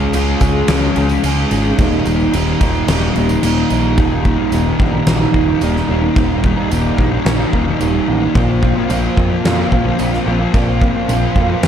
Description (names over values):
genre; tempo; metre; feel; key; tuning
rock, shoegaze and dream pop; 110 BPM; 4/4; straight; Eb mixolydian; A4 = 444 Hz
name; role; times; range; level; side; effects
fingerpicked twelve-string acoustic guitar; arpeggios; 0.0-11.7 s; Eb2 to Ab4; -23 LUFS; right 4 dB; wide subtle chorus, analog delay
electric guitar through a small old amp; riff; 0.0-11.7 s; Eb2 to Ab4; -20 LUFS; right 10 dB; reverse reverb
thick fuzz guitar; riff; 0.0-11.7 s; Eb2 to Db4; -19 LUFS; left 8 dB; distortion, analog chorus
growling picked electric bass; bass; 0.0-11.7 s; Eb1 to F2; -19 LUFS; equal; overdrive
tambourine; percussion; 0.0-11.2 s; none; -36 LUFS; right 6 dB; none
huge arena drum kit; drums; 0.1-11.7 s; crash cymbal, kick drum, snare drum; -18 LUFS; equal; none
room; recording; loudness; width
light reverb, small room reverb; dark, warm production; -12 LUFS; side -9 dB against mid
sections
0.0-4.0 A section; 4.0-11.7 B section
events
none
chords
0.0 Db; 1.8 Eb; 8.4 Bbsus2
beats
0.14 0.69 1.24 | 1.78 2.33 2.88 3.43 | 3.98 4.52 5.07 5.62 | 6.17 6.71 7.26 7.80 | 8.35 8.90 9.44 9.99 | 10.54 11.08 11.63